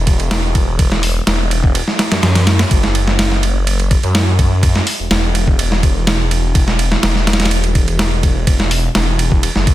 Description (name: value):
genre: breakbeat, breaks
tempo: 125 BPM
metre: 4/4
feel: straight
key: unclear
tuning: A4 = 440 Hz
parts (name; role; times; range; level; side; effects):
- phased detuned saw bass; bass; 0.0-9.7 s; E1 to F#2; -16 LUFS; equal; phaser, tube saturation
- dusty soul sampler-style drum kit; drums; 0.1-9.7 s; hi-hat, kick drum, ride cymbal, snare drum; -14 LUFS; equal; none
room: light reverb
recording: dense, heavily limited modern master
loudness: -12 LUFS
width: side -14 dB against mid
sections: 0.0-9.7 A section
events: none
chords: none